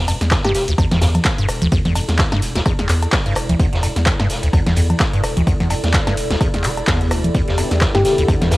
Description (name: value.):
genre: acid house.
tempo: 128 BPM.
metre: 4/4.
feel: swing 56% on 16ths.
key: E minor.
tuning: A4 = 440 Hz.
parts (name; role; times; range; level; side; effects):
liquid acid bass; riff; 0.0-8.6 s; D2 to E3; -20 LUFS; equal; phaser, tube saturation.
warbly tape-like pad; texture; 1.1-8.6 s; E4 to D5; -28 LUFS; equal; chorus, built-in reverb, sidechain pumping.
round analog bass; bass; 0.1-8.6 s; E1 to E2; -21 LUFS; equal; sidechain pumping.
electro analog drum machine; drums; 0.1-8.6 s; congas, cowbell, handclaps, hi-hat, ride cymbal, rim click, shaker, snare drum; -21 LUFS; equal; none.
street-band drum kit; drums; 0.1-8.6 s; hi-hat, snare drum; -28 LUFS; equal; high-pass filter on hats, high-pass filter on snare, high-pass filter on room.
electronic kick drum; drums; 0.3-8.4 s; none; -19 LUFS; equal; none.
soft struck synth lead; melody; 0.4-0.6, 7.9-8.1 s; G4; -20 LUFS; left 2 dB; chorus, phaser, cassette tape, tape echo.
warm analog pad; sustained chords; 7.3-8.6 s; D3 to G4; -24 LUFS; equal; chorus, sidechain pumping.
room: light reverb.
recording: home recording on cassette.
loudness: -14 LUFS.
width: side -19 dB against mid.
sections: 0.0-8.6 A section.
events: none.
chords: 0.0 Em7.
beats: 0.31 0.78 1.25 | 1.72 2.19 2.66 3.13 | 3.60 4.06 4.53 5.00 | 5.47 5.94 6.41 6.88 | 7.34 7.81 8.28.